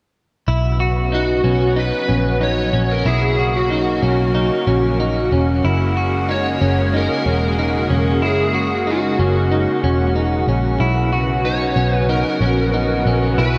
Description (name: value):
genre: dream pop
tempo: 93 BPM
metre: 4/4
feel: straight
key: B major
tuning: A4 = 438 Hz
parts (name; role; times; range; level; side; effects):
- lush unison pad; sustained chords; 0.5-13.6 s; C#3 to F#4; -24 LUFS; equal; chorus
- clean electric guitar; arpeggios; 0.5-13.6 s; C#4 to F#4; -25 LUFS; equal; lush chorus, tape echo
- vintage muted picked electric bass; bass; 0.5-13.6 s; E1 to B1; -22 LUFS; equal; none
- overdriven slide guitar; melody; 1.1-13.6 s; F#4 to C#5; -24 LUFS; equal; ensemble chorus, tape echo
room: wet lush hall reverb, RT60 2.5 s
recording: dreamy mix soaked in reverb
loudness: -18 LUFS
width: mono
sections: 0.5-13.6 A section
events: none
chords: 0.5 Bsus2; 5.6 F#add9; 10.8 Bsus2